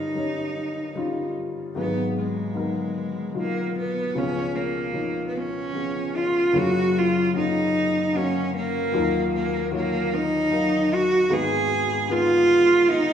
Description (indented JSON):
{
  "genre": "acoustic folk-pop ballad",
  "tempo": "76 BPM",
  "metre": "3/4",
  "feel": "straight",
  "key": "F# major",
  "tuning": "A4 = 440 Hz",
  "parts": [
    { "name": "bright cello", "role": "melody", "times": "0.0-13.1 s", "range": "G#3 to G#4", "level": "-22 LUFS", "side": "right 1 dB", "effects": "none" },
    { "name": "dark upright piano", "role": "accompaniment", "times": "0.0-13.1 s", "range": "F#1 to E#5", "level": "-26 LUFS", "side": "left 3 dB", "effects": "none" }
  ],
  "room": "wet scoring stage reverb, RT60 2.1 s",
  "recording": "recorded in a church or concert hall, small room ambience",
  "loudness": "-21 LUFS",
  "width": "side -8 dB against mid",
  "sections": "0.0-6.5 A section; 6.5-13.1 B section",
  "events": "none",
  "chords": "0.0 D#7/G; 1.8 G#m7; 4.1 C#7; 6.5 F#add9; 8.9 D#madd9; 11.3 G#m"
}